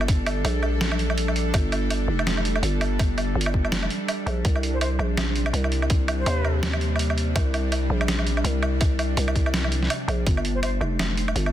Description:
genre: half-time drum and bass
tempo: 165 BPM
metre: 4/4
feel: swing 58% on 16ths, half-time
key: G minor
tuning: A4 = 440 Hz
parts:
  - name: bowed-like drone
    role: sustained chords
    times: 0.0-11.5 s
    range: C3 to A4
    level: -30 LUFS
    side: equal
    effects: built-in reverb, sidechain pumping
  - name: growling 808-style bass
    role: bass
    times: 0.0-11.5 s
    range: F1 to Eb2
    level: -24 LUFS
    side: equal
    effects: none
  - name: boom bap sampler-style drum kit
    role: drums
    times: 0.0-11.5 s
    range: hi-hat, snare drum, woodblock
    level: -27 LUFS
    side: right 2 dB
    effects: small room reverb
  - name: electronic kick drum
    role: drums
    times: 0.1-10.3 s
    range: none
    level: -22 LUFS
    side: equal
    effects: small room reverb
  - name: silver concert flute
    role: melody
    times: 4.7-6.6, 10.5-10.7 s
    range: C5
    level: -34 LUFS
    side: left 1 dB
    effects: vintage 12-bit sampler grit, ping-pong delay
room: light reverb, digital ambience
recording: dense, heavily limited modern master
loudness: -21 LUFS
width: side -12 dB against mid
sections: 0.0-11.5 A section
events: none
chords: 0.0 Gm7; 4.4 Cmadd9; 10.3 G7(no3)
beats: | 0.08 0.45 0.81 1.17 | 1.54 1.90 2.27 2.63 | 2.99 3.36 3.72 4.08 | 4.45 4.81 5.17 5.54 | 5.90 6.26 6.63 6.99 | 7.36 7.72 8.08 8.45 | 8.81 9.17 9.54 9.90 | 10.27 10.63 10.99 11.36

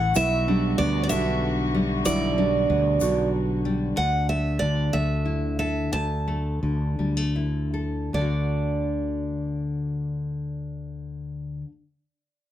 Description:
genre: acoustic folk duo or small band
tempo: 49-63 BPM (dotted quarters)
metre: 6/8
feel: straight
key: D major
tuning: A4 = 439 Hz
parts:
  - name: picked steel-string acoustic guitar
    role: melody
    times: 0.0-11.6 s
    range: D5 to A5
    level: -27 LUFS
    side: right 3 dB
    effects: none
  - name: nylon-string guitar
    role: accompaniment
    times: 0.0-11.7 s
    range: D2 to A4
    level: -28 LUFS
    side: left 3 dB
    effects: none
  - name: warm chamber string section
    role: sustained chords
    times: 0.0-3.9 s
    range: C#3 to F#4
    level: -33 LUFS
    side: left 2 dB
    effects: none
  - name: sustaining fretless electric bass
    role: bass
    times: 0.0-11.6 s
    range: A1 to D2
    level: -27 LUFS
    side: equal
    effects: none
  - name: egg shaker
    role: percussion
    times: 0.1-3.2 s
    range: none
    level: -34 LUFS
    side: left 4 dB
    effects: none
  - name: felt-muted upright piano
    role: arpeggios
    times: 0.2-3.6 s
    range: D4 to F#4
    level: -29 LUFS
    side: right 6 dB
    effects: none
room: moderate studio reverb, RT60 0.6 s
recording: none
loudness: -22 LUFS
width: side -12 dB against mid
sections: 0.0-4.0 A section; 4.0-8.1 B section; 8.1-12.5 C section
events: slowing down 4.0-8.1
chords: 0.2 Gmaj7/B; 4.0 Dsus2; 8.1 D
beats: | 0.16 1.11 | 2.06 3.01 | 3.96 4.92 | 5.92 6.99 | 8.14 9.36 | 10.57

